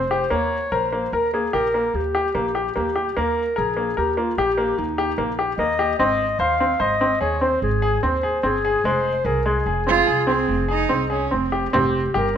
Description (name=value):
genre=contemporary instrumental, chamber music in an uneven meter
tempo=147 BPM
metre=7/4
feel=straight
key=unclear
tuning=A4 = 440 Hz
part: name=dark clarinet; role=melody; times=0.0-12.4 s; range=Eb4 to F5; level=-23 LUFS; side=left 2 dB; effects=none
part: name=bright baby grand piano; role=arpeggios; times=0.0-12.3 s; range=Ab3 to C5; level=-22 LUFS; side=left 1 dB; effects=none
part: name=upright bass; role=bass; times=0.0-12.4 s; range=F1 to Eb2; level=-27 LUFS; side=right 2 dB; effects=none
part: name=rich cello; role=second line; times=9.9-11.7 s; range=C4 to F4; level=-22 LUFS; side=right 8 dB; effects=none
part: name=frame drum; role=percussion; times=11.7-12.0 s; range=none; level=-30 LUFS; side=right 3 dB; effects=none
room=light reverb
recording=minimal, uncompressed stereo recording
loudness=-19 LUFS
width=side -8 dB against mid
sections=0.0-11.7 A section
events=none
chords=0.3 Eb; 6.0 Abmaj7; 8.9 Fm; 11.7 C5/F